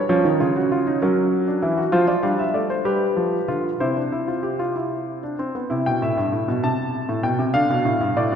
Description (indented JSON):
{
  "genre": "classical, baroque-style 3-part fugue for grand piano",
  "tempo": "65 BPM (dotted quarters)",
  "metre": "6/8",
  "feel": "uneven beats",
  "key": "C major",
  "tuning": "A4 = 440 Hz",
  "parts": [
    { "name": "warm baby grand piano", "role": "solo", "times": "0.0-8.4 s", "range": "G2 to A5", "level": "-19 LUFS", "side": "equal", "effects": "none" }
  ],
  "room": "wet church reverb, RT60 2.5 s",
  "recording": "recorded in a church or concert hall",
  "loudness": "-19 LUFS",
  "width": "side -8 dB against mid",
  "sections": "0.0-5.7 A section; 5.7-8.4 B section",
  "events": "none",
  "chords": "0.1 C#; 1.0 F#7; 1.9 Dm7/F; 2.9 G7; 3.8 C; 6.6 Am/C; 7.5 Dm"
}